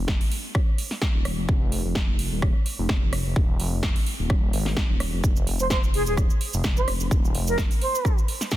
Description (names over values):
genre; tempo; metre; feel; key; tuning
bass house; 128 BPM; 4/4; swing 55% on 16ths; F minor; A4 = 440 Hz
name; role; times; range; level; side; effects
phased detuned saw bass; bass; 0.0-7.7 s; Eb1 to Ab1; -27 LUFS; equal; phaser, tube saturation, sidechain pumping
big-room dance drum kit; drums; 0.1-8.6 s; hi-hat, rim click, snare drum; -30 LUFS; right 1 dB; none
electronic kick drum; drums; 0.1-8.6 s; none; -22 LUFS; equal; none
cabasa; percussion; 5.2-8.6 s; none; -35 LUFS; right 4 dB; none
bright wooden flute; melody; 5.6-8.2 s; Ab4 to C5; -27 LUFS; right 2 dB; dub echo
room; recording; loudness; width
small room ambience; dense, heavily limited modern master; -21 LUFS; side -14 dB against mid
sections
0.0-8.6 A section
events
none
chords
none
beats
0.08 0.55 1.02 | 1.49 1.96 2.42 2.89 | 3.36 3.83 4.30 4.77 | 5.24 5.71 6.17 6.64 | 7.11 7.58 8.05 8.52